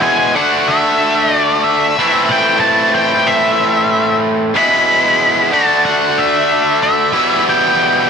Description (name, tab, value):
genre	rock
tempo	93 BPM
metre	4/4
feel	straight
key	A dorian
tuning	A4 = 440 Hz
part	octave-fuzz lead guitar	melody	0.0-8.1 s	E5 to B5	-14 LUFS	left 1 dB	wah, distortion, plate reverb, analog delay
part	biting overdriven guitar	riff	0.0-8.1 s	E2 to F#4	-13 LUFS	equal	none
room	moderate studio reverb, RT60 0.8 s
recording	none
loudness	-10 LUFS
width	side -6 dB against mid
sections	0.0-8.1 A section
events	none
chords	0.4 Dadd9; 2.0 Am; 4.6 E; 5.5 Dadd9; 7.1 Em